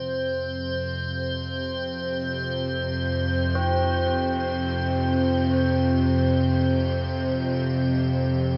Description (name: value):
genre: ambient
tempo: free time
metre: none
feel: none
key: unclear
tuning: A4 = 440 Hz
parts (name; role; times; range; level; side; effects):
- bowed-like drone; drone; 0.0-8.6 s; F2 to C3; -26 LUFS; equal; built-in reverb
- icy glass pad; texture; 0.0-8.6 s; C5; -31 LUFS; equal; chorus, built-in reverb
- tubular bells; arpeggios; 3.6-8.6 s; C4; -33 LUFS; equal; diffuse ambient delay
room: wet huge ambient reverb, RT60 7.5 s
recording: nothing above 7.6 kHz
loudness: -25 LUFS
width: mono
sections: 0.0-8.6 A section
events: fade-in on synth drone 0.0-8.6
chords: 0.0 F5